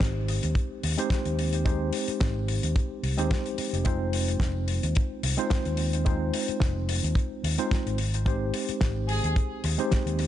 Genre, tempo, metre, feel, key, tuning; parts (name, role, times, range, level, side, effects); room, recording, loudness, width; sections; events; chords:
nu-disco, nu disco; 109 BPM; 4/4; swing 54% on 16ths; Ab major; A4 = 442 Hz
tine electric piano; accompaniment; 0.0-10.3 s; Ab3 to C5; -30 LUFS; equal; medium stereo tremolo, ping-pong delay
fingered electric bass; bass; 0.0-10.3 s; F1 to Eb2; -28 LUFS; equal; tube saturation, sidechain pumping
damped 70s drum kit; drums; 0.0-10.3 s; hi-hat, rim click, snare drum; -34 LUFS; left 4 dB; studio reverb
kick drum; drums; 0.0-10.0 s; -25 LUFS; equal; studio reverb
warm studio violin section; melody; 9.1-9.3 s; Ab4; -34 LUFS; equal; ping-pong delay
light reverb, small room ambience; nothing above 10.3 kHz; -24 LUFS; side -12 dB against mid
0.0-10.3 A section
0.0 Abmaj7; 3.9 Fm7; 8.0 Abmaj7